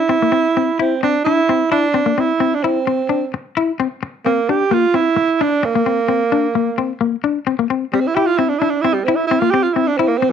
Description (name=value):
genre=highlife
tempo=130 BPM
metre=4/4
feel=straight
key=C mixolydian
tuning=A4 = 438 Hz
part: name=warm tenor saxophone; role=melody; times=0.0-10.3 s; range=G3 to G4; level=-16 LUFS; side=right 5 dB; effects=cassette tape
part: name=semi-hollow electric guitar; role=accompaniment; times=0.1-10.3 s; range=Bb3 to E4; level=-18 LUFS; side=left 8 dB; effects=cassette tape
room=wet studio reverb, RT60 0.6 s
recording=home recording on cassette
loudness=-15 LUFS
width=side -8 dB against mid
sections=0.0-7.5 A section; 7.5-10.3 B section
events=tenor saxophone solo 7.5-10.3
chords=0.1 C; 3.8 Bb; 7.5 C